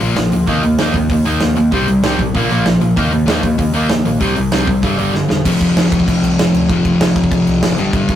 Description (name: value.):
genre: punk rock.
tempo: 193 BPM.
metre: 4/4.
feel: straight.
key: unclear.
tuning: A4 = 438 Hz.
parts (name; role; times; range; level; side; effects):
sludgy distorted guitar; riff; 0.0-8.2 s; F2 to Eb4; -14 LUFS; left 2 dB; overdrive.
overdriven picked electric bass; bass; 0.0-8.2 s; E1 to Eb2; -23 LUFS; right 1 dB; none.
big rock drum kit; drums; 0.0-8.2 s; crash cymbal, hi-hat, kick drum, snare drum; -18 LUFS; right 1 dB; none.
overdriven semi-hollow guitar; riff; 0.5-5.4 s; G2 to Eb4; -20 LUFS; right 5 dB; none.
room: light reverb.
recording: rough rehearsal-room recording, warm saturation.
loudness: -12 LUFS.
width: side -11 dB against mid.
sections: 0.0-5.5 A section; 5.5-8.2 B section.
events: drum fill 5.1-5.5.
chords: 0.5 Eb5; 1.7 C5; 2.3 Bb5; 3.0 Eb5; 4.2 C5; 4.8 G5; 5.5 F5.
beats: 0.17 | 0.48 0.79 1.10 1.41 | 1.73 2.04 2.35 2.66 | 2.97 3.28 3.59 3.90 | 4.21 4.53 4.84 5.15 | 5.46 5.77 6.08 6.38 | 6.70 7.00 7.31 7.62 | 7.93.